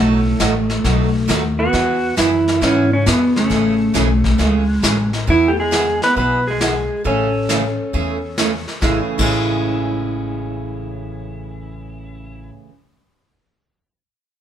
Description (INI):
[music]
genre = country, western swing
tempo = 135 BPM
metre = 4/4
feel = swing 67% on 8ths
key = A major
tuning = A4 = 440 Hz
[part]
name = clean lap steel guitar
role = melody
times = 0.0-12.5 s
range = A3 to B4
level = -19 LUFS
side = equal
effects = none
[part]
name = vintage hollow-body jazz guitar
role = second line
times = 0.0-12.5 s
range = A2 to C#4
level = -23 LUFS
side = right 2 dB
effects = none
[part]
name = picked steel-string acoustic guitar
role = accompaniment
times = 0.0-12.7 s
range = A2 to G#4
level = -24 LUFS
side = right 5 dB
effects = none
[part]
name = upright bass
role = bass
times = 0.0-12.5 s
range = A1 to G#2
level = -22 LUFS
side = left 1 dB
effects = none
[part]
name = vintage brush drum kit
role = drums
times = 0.4-9.3 s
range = brushed snare drum, crash cymbal, hi-hat, kick drum, snare drum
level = -22 LUFS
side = left 1 dB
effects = none
[sound]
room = light reverb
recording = band playing live in one room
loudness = -15 LUFS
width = side -10 dB against mid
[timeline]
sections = 0.0-5.3 A section; 5.3-8.8 B section; 8.8-12.4 C section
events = none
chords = 0.0 B7; 1.7 E; 3.5 Amaj7; 5.3 E; 7.1 Amaj7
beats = 0.41 0.85 1.29 | 1.74 2.18 2.62 3.06 | 3.51 3.95 4.39 4.84 | 5.28 5.72 6.17 6.61 | 7.05 7.49 7.94 8.38 | 8.82 9.27 9.71 10.16 | 10.60 11.04 11.49 11.93